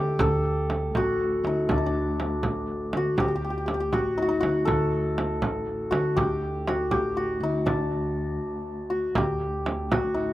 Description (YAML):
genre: Persian modal ensemble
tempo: 80 BPM (dotted quarters)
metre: 6/8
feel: straight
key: D dastgah homayun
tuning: A4 = 440 Hz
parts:
  - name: santur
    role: melody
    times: 0.0-10.3 s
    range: D4 to A4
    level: -26 LUFS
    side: left 1 dB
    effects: slapback echo
  - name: upright bass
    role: bass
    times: 0.0-10.3 s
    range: A1 to D3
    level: -31 LUFS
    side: equal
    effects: none
  - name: warm double bass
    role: drone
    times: 0.0-10.3 s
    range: D2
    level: -36 LUFS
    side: equal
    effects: stereo widening
  - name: frame drum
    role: percussion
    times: 0.2-10.0 s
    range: none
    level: -29 LUFS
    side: right 2 dB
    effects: none
room: light reverb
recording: recorded outdoors, with no room sound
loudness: -24 LUFS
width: side -15 dB against mid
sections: 0.0-9.2 A section; 9.2-10.3 A section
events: stop 8.4-9.2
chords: none